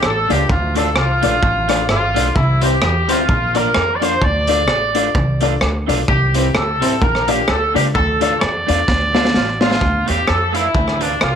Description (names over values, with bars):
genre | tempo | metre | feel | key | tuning
ska | 129 BPM | 4/4 | swing 57% on 8ths | D minor | A4 = 440 Hz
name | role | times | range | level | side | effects
bright horn section | melody | 0.0-11.4 s | D4 to D5 | -18 LUFS | equal | none
upright bass | bass | 0.0-11.4 s | G1 to F2 | -20 LUFS | equal | none
raw garage drum kit | drums | 0.0-11.3 s | hi-hat, kick drum, rim click, snare drum | -19 LUFS | equal | slapback echo
electric guitar through a small old amp | accompaniment | 0.3-11.1 s | G3 to F4 | -25 LUFS | right 13 dB | none
dark upright piano | stabs | 0.3-9.7 s | C4 to D5 | -22 LUFS | left 12 dB | none
room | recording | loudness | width
light reverb | 1960s-style stereo with parts hard left and right | -14 LUFS | side -8 dB against mid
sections
0.0-9.8 A section; 9.8-11.4 B section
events
drum fill 8.9-9.8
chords
0.5 Dm; 2.4 C; 3.3 Bb; 4.2 Dm; 6.1 C; 7.0 Bb; 7.9 Dm